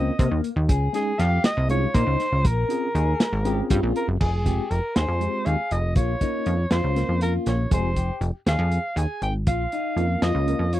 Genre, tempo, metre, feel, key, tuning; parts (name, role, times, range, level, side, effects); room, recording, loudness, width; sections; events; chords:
progressive instrumental, band music in an uneven meter; 239 BPM (eighths); 7/8; straight; Bb dorian; A4 = 440 Hz
mellow soprano saxophone; melody; 0.0-10.8 s; Ab4 to Ab5; -28 LUFS; equal
tine electric piano; accompaniment; 0.0-10.7 s; Ab3 to Bb4; -29 LUFS; equal; overdrive, medium stereo tremolo
electric guitar at the edge of break-up; arpeggios; 0.0-10.8 s; Bb3 to Bb4; -31 LUFS; left 5 dB
plucky analog bass; bass; 0.0-10.8 s; F1 to C3; -23 LUFS; equal
vintage drum kit; drums; 0.2-10.8 s; crash cymbal, hi-hat, kick drum, snare drum; -24 LUFS; equal
little or no reverb; dry, close 1970s-style studio recording; -21 LUFS; side -14 dB against mid
0.0-4.2 A section; 4.2-10.8 B section
0.0 Eb7(no3); 0.7 Dbsus2; 2.4 Bbm7; 4.2 Fmadd9; 6.0 Bbm; 7.7 Fmadd9; 9.5 Bbm